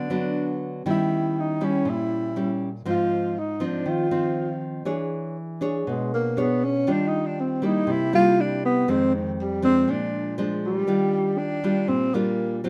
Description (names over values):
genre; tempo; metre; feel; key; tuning
bossa nova; 120 BPM; 4/4; straight; Eb major; A4 = 440 Hz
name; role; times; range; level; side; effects
breathy tenor saxophone; melody; 0.0-12.6 s; Eb3 to F4; -26 LUFS; equal; none
nylon-string guitar; accompaniment; 0.0-12.7 s; F2 to C#5; -28 LUFS; equal; none
room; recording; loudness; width
moderate studio reverb, RT60 0.8 s; none; -24 LUFS; mono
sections
0.0-10.9 A section; 10.9-12.7 B section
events
tenor saxophone solo 0.0-10.9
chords
0.0 Gmaj7 (rootless); 0.9 Eb7b9; 2.9 Ab6; 4.9 E6; 6.9 Ebmaj9; 7.9 C7; 8.9 Fm7; 9.9 Bb7; 10.9 Ebmaj9